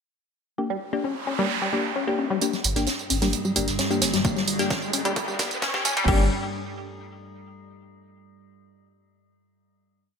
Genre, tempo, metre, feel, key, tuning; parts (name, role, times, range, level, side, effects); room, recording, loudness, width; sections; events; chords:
driving peak-time techno; 131 BPM; 4/4; straight; G minor; A4 = 440 Hz
wavetable chord stab; stabs; 0.6-6.3 s; Bb3 to G4; -28 LUFS; left 3 dB; sidechain pumping, ping-pong delay
noise sweep and riser; sound effects; 0.9-6.1 s; -32 LUFS; right 2 dB
tight sequenced synth; riff; 0.7-6.3 s; G3 to C#4; -28 LUFS; left 3 dB; chorus, overdrive, cassette tape, sidechain pumping, ping-pong delay
metallic inharmonic drone; drone; 3.1-6.1 s; G2 to G3; -33 LUFS; right 2 dB; chorus, built-in reverb, sidechain pumping
punchy analog drum machine; drums; 2.4-6.2 s; crash cymbal, hi-hat, tambourine; -28 LUFS; right 5 dB; sidechain pumping on hats, high-pass filter on hats, low-pass filter on hats, sidechain pumping on perc, high-pass filter on perc, low-pass filter on perc, sidechain pumping on cymbals, high-pass filter on cymbals, low-pass filter on cymbals
soft-mallet drum kit; drums; 2.4-6.1 s; hi-hat, snare drum; -32 LUFS; right 3 dB; high-pass filter on hats, high-pass filter on snare, high-pass filter on room
warm sub bass; bass; 2.6-6.3 s; G1; -28 LUFS; equal; sidechain pumping, low-pass filter
electronic kick drum; drums; 4.2-6.2 s; -26 LUFS; equal
moderate plate reverb, RT60 2.0 s, digital ambience; bright 1980s-style digital production, high-pass filter; -22 LUFS; side -6 dB against mid
0.6-2.4 intro; 2.4-6.1 build; 6.1-7.9 final chord
filter sweep on synth stab 0.6-2.4, 2.4-6.1; noise sweep 0.9-2.4; build-up 2.4-6.1; riser 2.4-6.1; filter sweep on synth arpeggio sound 2.4-6.1; drum fill 4.2-6.1
0.6 Gm; 6.1 N.C.